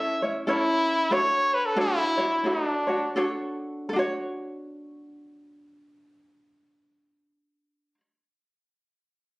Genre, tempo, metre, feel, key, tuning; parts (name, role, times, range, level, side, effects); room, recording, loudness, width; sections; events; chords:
hawaiian; 76-98 BPM; 4/4; swing 61% on 8ths; D major; A4 = 440 Hz
warm trumpet; melody; 0.0-3.2 s; D4 to E5; -24 LUFS; equal
ukulele; accompaniment; 0.0-8.0 s; C#4 to C#5; -28 LUFS; equal
moderate studio reverb, RT60 0.6 s; recorded on a phone in the room, studio reverb, compression; -23 LUFS; side -25 dB against mid
0.0-3.9 A section; 3.9-7.1 B section
slowing down 0.0-3.9
0.0 A; 1.1 Dmaj7